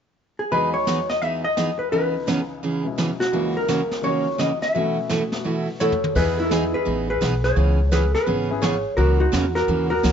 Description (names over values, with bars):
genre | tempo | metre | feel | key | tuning
country, western swing | 170 BPM | 4/4 | swing 64% on 8ths | E major | A4 = 441 Hz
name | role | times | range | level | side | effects
hollow-body jazz guitar | melody | 0.4-10.1 s | D#4 to E5 | -22 LUFS | equal | none
clear upright piano | accompaniment | 0.5-8.6 s | C#2 to G#4 | -30 LUFS | left 6 dB | none
picked steel-string acoustic guitar | accompaniment | 0.5-10.1 s | B2 to G#4 | -25 LUFS | right 3 dB | none
jazz brush drum kit | drums | 0.5-10.1 s | brushed snare drum, crash cymbal, hi-hat, kick drum, snare drum, toms | -30 LUFS | equal | none
upright bass | bass | 6.2-10.1 s | G#1 to E2 | -22 LUFS | equal | none
room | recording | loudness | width
light reverb | nothing above 7.6 kHz | -19 LUFS | side -8 dB against mid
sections
0.5-6.2 A section; 6.2-10.1 B section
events
drum fill 5.8-6.2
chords
0.0 N.C.; 0.5 Emaj7; 1.9 C#m7; 3.3 F#7/C#; 4.7 B7sus4; 6.2 Emaj7; 7.6 C#m7; 9.0 F#7/C#